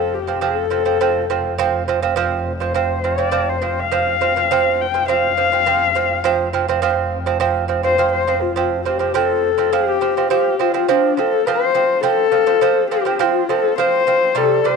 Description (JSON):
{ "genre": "mongolian traditional, Mongolian folk", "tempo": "103 BPM", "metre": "4/4", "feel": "straight", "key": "F gong mode", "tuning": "A4 = 438 Hz", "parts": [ { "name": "dark horsehead fiddle", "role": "melody", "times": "0.0-14.8 s", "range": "D4 to G5", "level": "-18 LUFS", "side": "left 11 dB", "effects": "none" }, { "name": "lute", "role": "arpeggios", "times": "0.0-14.8 s", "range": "C3 to C4", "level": "-18 LUFS", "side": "right 9 dB", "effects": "none" }, { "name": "rich double bass", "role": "drone", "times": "0.0-9.8 s", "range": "F1", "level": "-28 LUFS", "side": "left 1 dB", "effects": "none" } ], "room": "moderate plate reverb, RT60 3.8 s", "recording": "1960s-style stereo with parts hard left and right", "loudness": "-15 LUFS", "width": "side -5 dB against mid", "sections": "0.0-9.7 A section; 9.7-14.8 B section", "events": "none", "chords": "0.0 F5" }